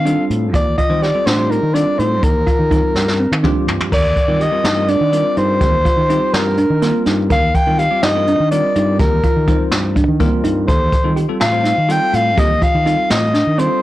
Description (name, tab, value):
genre	progressive instrumental, band music in an uneven meter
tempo	248 BPM (eighths)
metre	7/8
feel	straight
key	Eb lydian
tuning	A4 = 439 Hz
part	breathy soprano saxophone	melody	0.0-13.8 s	Bb4 to G5	-17 LUFS	left 1 dB	tape echo
part	overdriven fingered electric bass	bass	0.0-13.7 s	Eb2 to Eb3	-19 LUFS	equal	none
part	bell-like tine electric piano	accompaniment	0.1-13.8 s	G3 to C5	-23 LUFS	left 1 dB	medium stereo tremolo
part	thumb-piano-like synth pluck	arpeggios	0.1-13.8 s	Bb3 to Bb4	-21 LUFS	right 2 dB	chorus
part	jazz brush drum kit	drums	0.1-13.7 s	crash cymbal, hi-hat, kick drum, snare drum, toms	-18 LUFS	equal	soft clipping on snare
room	moderate small room reverb, RT60 0.5 s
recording	blown-out, overdriven recording, overdrive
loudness	-13 LUFS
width	side -15 dB against mid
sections	0.0-3.9 A section; 3.9-13.8 A section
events	drum fill 3.0-3.9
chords	0.0 Fadd9/Eb; 2.2 Ebmaj7; 10.7 Fadd9/Eb